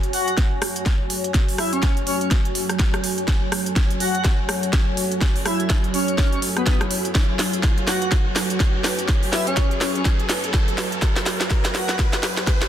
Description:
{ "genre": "bass house", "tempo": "124 BPM", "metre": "4/4", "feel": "swing 59% on 16ths", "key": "F# minor", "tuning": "A4 = 443 Hz", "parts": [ { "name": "dark analog pad", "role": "sustained chords", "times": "0.3-12.7 s", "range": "F#3 to C#5", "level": "-29 LUFS", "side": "right 2 dB", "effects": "chorus, vintage 12-bit sampler grit, sidechain pumping" }, { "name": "house drum kit", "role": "drums", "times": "0.0-12.7 s", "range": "hi-hat, rim click, snare drum", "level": "-24 LUFS", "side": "equal", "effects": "none" }, { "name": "riser", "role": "sound effects", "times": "0.0-12.7 s", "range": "none", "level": "-34 LUFS", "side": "right 1 dB", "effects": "none" }, { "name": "granular cloud pad", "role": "texture", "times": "0.0-12.7 s", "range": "F#4 to G#5", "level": "-30 LUFS", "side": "left 1 dB", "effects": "built-in reverb, sidechain pumping" }, { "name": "airy dreamy lead", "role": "melody", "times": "0.1-12.0 s", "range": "B3 to F#4", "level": "-27 LUFS", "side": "left 1 dB", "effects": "chorus, digital delay" }, { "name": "electronic kick drum", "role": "drums", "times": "0.4-12.6 s", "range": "none", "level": "-20 LUFS", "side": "equal", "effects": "none" } ], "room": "light reverb, digital ambience", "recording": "dense, heavily limited modern master", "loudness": "-18 LUFS", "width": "side -10 dB against mid", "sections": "0.0-12.7 A section", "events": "build-up 0.0-12.7; drum fill 0.0-12.7; riser 0.0-12.7", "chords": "0.0 F#m" }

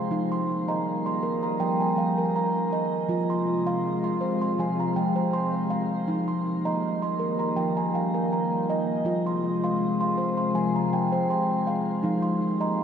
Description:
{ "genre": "world meditative, meditative tuned percussion", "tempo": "80 BPM", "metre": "4/4", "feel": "swing 53% on 16ths", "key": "F minor", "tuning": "A4 = 440 Hz", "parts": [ { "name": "warbly tape-like pad", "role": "sustained chords", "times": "0.0-12.8 s", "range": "C3 to F4", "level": "-29 LUFS", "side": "left 2 dB", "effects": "chorus, built-in reverb" }, { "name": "steel tongue drum", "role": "arpeggios", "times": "0.0-12.8 s", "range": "F3 to C6", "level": "-25 LUFS", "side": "right 1 dB", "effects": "diffuse ambient delay, shimmer reverb" } ], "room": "wet lush hall reverb, RT60 2.7 s", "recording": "dreamy mix soaked in reverb", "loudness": "-23 LUFS", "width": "side -8 dB against mid", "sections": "0.0-12.8 A section", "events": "none", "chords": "0.1 Eb; 3.1 Fm; 6.1 Eb; 9.1 Fm; 12.0 Eb" }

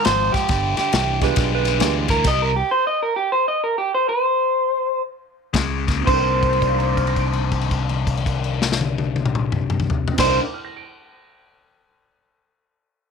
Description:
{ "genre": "electric blues shuffle", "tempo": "110-137 BPM", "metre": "4/4", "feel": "swing 65% on 8ths", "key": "C minor", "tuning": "A4 = 436 Hz", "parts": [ { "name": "electric guitar through a small old amp", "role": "melody", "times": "0.0-10.4 s", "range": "G4 to Eb5", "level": "-20 LUFS", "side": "right 1 dB", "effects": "none" }, { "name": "overdriven electric guitar", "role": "riff", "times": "0.0-2.5, 5.5-10.4 s", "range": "G2 to D4", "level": "-24 LUFS", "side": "left 8 dB", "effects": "phaser" }, { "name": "natural country drum kit", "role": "drums", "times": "0.0-2.4, 5.5-10.3 s", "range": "crash cymbal, kick drum, ride cymbal, snare drum, toms", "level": "-23 LUFS", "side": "left 2 dB", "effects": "none" }, { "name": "fingered electric bass", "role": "bass", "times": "0.1-2.6, 5.5-10.4 s", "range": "G1 to D2", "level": "-24 LUFS", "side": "right 1 dB", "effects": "none" }, { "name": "clean lap steel guitar", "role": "second line", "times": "1.2-2.0, 6.1-10.4 s", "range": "B4 to C5", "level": "-27 LUFS", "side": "right 17 dB", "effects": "none" }, { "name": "warm upright piano", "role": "accompaniment", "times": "1.2-2.1, 6.0-10.8 s", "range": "C3 to D7", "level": "-28 LUFS", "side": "right 15 dB", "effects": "none" } ], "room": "small room ambience", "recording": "1960s-style stereo with parts hard left and right", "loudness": "-18 LUFS", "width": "side -6 dB against mid", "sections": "0.0-6.1 A section; 6.1-10.4 B section", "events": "slowing down 2.2-6.1; held note 6.1-10.1", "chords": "0.5 G7b9; 2.2 C5; 5.5 Db5; 6.1 Cm9" }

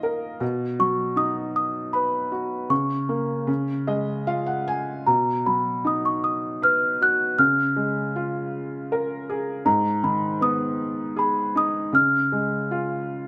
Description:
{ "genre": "children's music, lullaby", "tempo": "78 BPM", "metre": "3/4", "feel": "rubato", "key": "unclear", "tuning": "A4 = 440 Hz", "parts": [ { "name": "felt-muted upright piano", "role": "accompaniment", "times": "0.0-13.3 s", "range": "G#2 to G#5", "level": "-28 LUFS", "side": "equal", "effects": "none" }, { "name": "celesta", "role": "melody", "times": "0.8-13.3 s", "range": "A#5 to F#6", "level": "-25 LUFS", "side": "equal", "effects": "none" } ], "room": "light reverb", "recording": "close, detailed microphones", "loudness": "-24 LUFS", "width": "mono", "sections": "0.0-13.3 A section", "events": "felt piano fill 3.5-5.1", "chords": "0.4 B; 2.7 A#m/C#; 3.5 C#; 5.1 B; 7.4 C#6; 9.7 G#m; 11.9 C#" }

